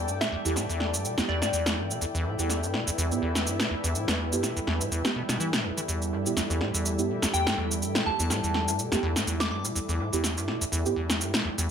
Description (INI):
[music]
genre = acid house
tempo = 124 BPM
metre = 4/4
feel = swing 55% on 16ths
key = E minor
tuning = A4 = 439 Hz
[part]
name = dark analog pad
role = sustained chords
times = 0.0-11.7 s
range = G3 to B4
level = -35 LUFS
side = right 1 dB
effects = chorus
[part]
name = acid bass, square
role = riff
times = 0.0-11.7 s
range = E2 to E3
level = -30 LUFS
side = equal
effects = tube saturation
[part]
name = granular cloud pad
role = texture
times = 0.0-11.7 s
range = E4 to G5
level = -36 LUFS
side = left 2 dB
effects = built-in reverb
[part]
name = electronic shaker and snare drum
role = drums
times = 0.1-11.7 s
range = none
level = -29 LUFS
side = equal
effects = overdrive
[part]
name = soft brush drum kit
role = drums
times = 0.1-11.7 s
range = hi-hat, snare drum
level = -47 LUFS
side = right 1 dB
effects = none
[part]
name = soft synth bell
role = melody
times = 0.2-1.5, 7.3-9.6 s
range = D5 to D6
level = -34 LUFS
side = left 1 dB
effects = chorus, phaser, dub echo
[part]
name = deep mellow chord stab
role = stabs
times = 0.5-11.0 s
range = B3 to G4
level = -33 LUFS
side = right 6 dB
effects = chorus, digital delay
[sound]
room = moderate studio reverb, RT60 0.6 s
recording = none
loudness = -25 LUFS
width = side -8 dB against mid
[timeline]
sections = 0.0-11.7 A section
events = none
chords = 0.0 Em